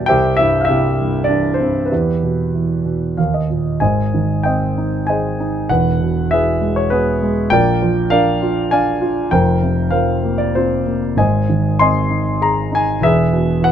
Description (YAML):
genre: classical, lyrical solo piano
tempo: 98 BPM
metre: 3/4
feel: rubato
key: C major, Ab lydian from 3.8 s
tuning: A4 = 440 Hz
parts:
  - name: dark concert grand piano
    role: solo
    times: 0.0-13.7 s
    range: E1 to C6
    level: -14 LUFS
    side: equal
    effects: none
room: little or no reverb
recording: close, detailed microphones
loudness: -14 LUFS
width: side -9 dB against mid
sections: 0.0-3.8 A section; 3.8-13.7 B section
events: grand piano fill 2.9-3.8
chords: 0.1 C; 1.9 Em; 3.2 Eb; 3.8 Ab; 5.7 Eadd9; 7.5 Bb; 9.3 Fsus4; 11.2 Ab; 13.0 E